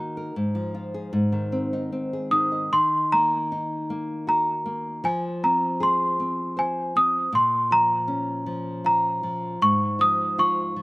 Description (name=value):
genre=children's music, lullaby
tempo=78 BPM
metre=3/4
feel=rubato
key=unclear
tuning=A4 = 439 Hz
part: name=worn celesta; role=melody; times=0.0-10.8 s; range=Ab5 to Eb6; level=-21 LUFS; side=equal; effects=slapback echo
part: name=nylon-string guitar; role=accompaniment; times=0.0-10.8 s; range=Ab2 to Gb5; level=-28 LUFS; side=left 1 dB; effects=none
room=light reverb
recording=recorded outdoors, with no room sound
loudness=-21 LUFS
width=side -24 dB against mid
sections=0.0-2.7 A section; 2.7-10.8 B section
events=none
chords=0.3 Fmadd11/Ab; 1.1 Abadd9; 2.7 Ebm; 5.0 Fm; 7.3 Bbm; 9.6 Db/Ab